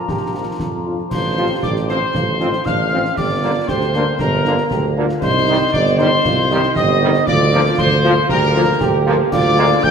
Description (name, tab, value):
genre	military-style march for wind band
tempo	117 BPM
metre	2/4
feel	straight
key	Bb major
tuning	A4 = 440 Hz
part	dark trumpet section	melody	0.0-9.9 s	Bb4 to G5	-21 LUFS	equal	none
part	clear euphonium	second line	0.0-9.9 s	Bb2 to G4	-22 LUFS	right 3 dB	none
part	glockenspiel with rubber mallets	second line	0.0-0.8 s	Bb5	-34 LUFS	left 4 dB	none
part	hollow piccolo	second line	0.0-9.9 s	Bb5 to G6	-22 LUFS	left 4 dB	none
part	warm trombone section	sustained chords	0.0-9.7 s	D3 to G4	-25 LUFS	right 2 dB	none
part	mellow tuba	bass	0.1-9.9 s	G1 to F2	-19 LUFS	right 2 dB	none
part	concert snare drum, concert bass drum and clash cymbals	drums	0.1-9.9 s	none	-25 LUFS	equal	none
part	warm French horn section	accompaniment	0.3-9.7 s	F3 to F4	-24 LUFS	left 4 dB	none
room	wet scoring stage reverb, RT60 2.1 s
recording	none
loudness	-14 LUFS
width	side -6 dB against mid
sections	0.0-1.1 A section; 1.1-9.9 A section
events	none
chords	0.0 Bb; 1.1 F/A; 3.2 Gm; 5.2 Cm; 7.3 Bb/D; 9.3 Bb7/D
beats	| 0.09 0.60 | 1.12 1.63 | 2.14 2.66 | 3.17 3.68 | 4.20 4.71 | 5.22 5.74 | 6.25 6.76 | 7.28 7.79 | 8.30 8.81 | 9.33 9.84